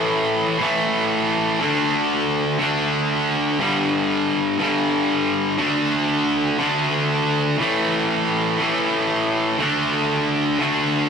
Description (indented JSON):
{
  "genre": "rock",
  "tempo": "120 BPM",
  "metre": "4/4",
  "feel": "straight",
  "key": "unclear",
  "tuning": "A4 = 440 Hz",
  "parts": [
    { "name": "distorted electric guitar", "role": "solo", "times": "0.0-11.1 s", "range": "G2 to D4", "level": "-18 LUFS", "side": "equal", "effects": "overdrive" }
  ],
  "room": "moderate stone room reverb, RT60 1.1 s",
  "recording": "rough rehearsal-room recording, warm saturation",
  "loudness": "-18 LUFS",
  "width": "side -6 dB against mid",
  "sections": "0.0-11.1 A section",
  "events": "none",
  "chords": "0.0 A5; 1.6 D5; 3.6 G5; 5.6 D5; 7.6 A5; 9.6 D5"
}